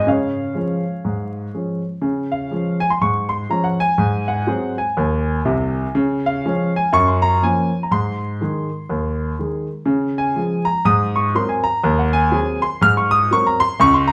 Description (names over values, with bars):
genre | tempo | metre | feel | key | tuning
jazz, stride piano | 122 BPM | 4/4 | swing 60% on 8ths | Db major | A4 = 437 Hz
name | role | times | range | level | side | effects
clear grand piano | solo | 0.0-14.1 s | C2 to F6 | -19 LUFS | equal | none
room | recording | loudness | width
wet club reverb, RT60 0.8 s | heard from further back in the room, vinyl crackle | -19 LUFS | mono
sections
0.0-2.0 A section; 2.0-14.1 A section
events
none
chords
0.1 Db; 4.0 Ab7; 5.9 Db; 6.9 Gbmaj7; 7.9 Ab; 9.9 Db; 10.9 Ab9; 11.8 Ab7/Eb; 12.8 Ab9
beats
| 0.07 0.56 1.05 1.54 | 2.03 2.52 3.00 3.50 | 3.98 4.47 4.96 5.46 | 5.95 6.44 6.93 7.42 | 7.91 8.40 8.89 9.38 | 9.87 10.36 10.86 11.35 | 11.84 12.33 12.82 13.31 | 13.80